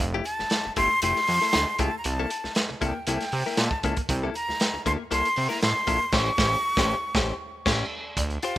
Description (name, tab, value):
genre	funk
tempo	117 BPM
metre	4/4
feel	straight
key	unclear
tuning	A4 = 441 Hz
part	breathy jazz flute	melody	0.0-8.6 s	D5 to C#6	-26 LUFS	equal	analog delay
part	direct-recorded clean electric guitar	accompaniment	0.0-8.6 s	A3 to C#5	-31 LUFS	left 6 dB	none
part	fat analog bass	bass	0.0-8.4 s	F1 to C3	-28 LUFS	right 1 dB	none
part	crunchy breakbeat drum kit	drums	0.0-8.6 s	crash cymbal, hi-hat, kick drum, snare drum	-27 LUFS	right 1 dB	none
room	little or no reverb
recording	rough home demo mix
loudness	-22 LUFS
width	side -14 dB against mid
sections	0.0-8.2 A section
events	band accent 6.1-8.2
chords	0.0 Fmaj9; 2.0 C13; 6.1 A7#9